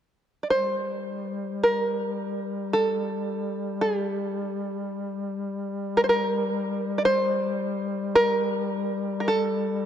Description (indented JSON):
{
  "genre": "caucasian folk, Caucasian lament",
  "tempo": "52-57 BPM",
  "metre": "3/4",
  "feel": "rubato",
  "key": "G minor",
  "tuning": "A4 = 445 Hz",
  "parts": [
    { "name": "open-back banjo", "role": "melody", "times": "0.4-9.9 s", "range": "G4 to D5", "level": "-24 LUFS", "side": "right 1 dB", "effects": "none" },
    { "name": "mellow duduk", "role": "drone", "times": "0.5-9.9 s", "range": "G3", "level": "-30 LUFS", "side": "left 3 dB", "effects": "none" }
  ],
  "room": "wet church reverb, RT60 3.5 s",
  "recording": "dark, warm production",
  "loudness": "-24 LUFS",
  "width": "side -9 dB against mid",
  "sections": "0.5-9.9 A section",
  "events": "none",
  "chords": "none"
}